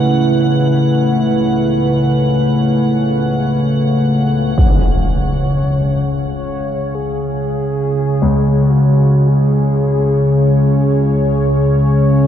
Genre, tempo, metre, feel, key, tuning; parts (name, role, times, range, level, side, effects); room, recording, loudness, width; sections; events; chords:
dark ambient drone; free time; A4 = 440 Hz
dark analog pad; sustained chords; 0.0-12.3 s; C#3 to C#5; -18 LUFS; equal; chorus
dark concert grand piano; arpeggios; 0.0-12.3 s; C#2; -20 LUFS; left 5 dB; tape echo
organ-like drone; drone; 0.0-12.3 s; C#2 to C#3; -14 LUFS; equal; ensemble chorus, built-in reverb
icy glass pad; texture; 0.0-4.6 s; F#5; -26 LUFS; right 2 dB; chorus, built-in reverb
mellow horn-like synth lead; melody; 4.6-11.1 s; F#4 to C#5; -24 LUFS; left 1 dB; chorus, tape echo
impact; percussion; 4.6-4.8 s; -16 LUFS; equal; low-pass filter on sfx
wet cathedral reverb, RT60 6.0 s; cassette tape; -12 LUFS; side -9 dB against mid
0.0-4.6 A section; 4.6-12.3 B section
fade-in on analog synth pad 4.6-12.3; fade-in on soft synth lead 4.6-12.3
0.0 A/C#; 4.6 C#m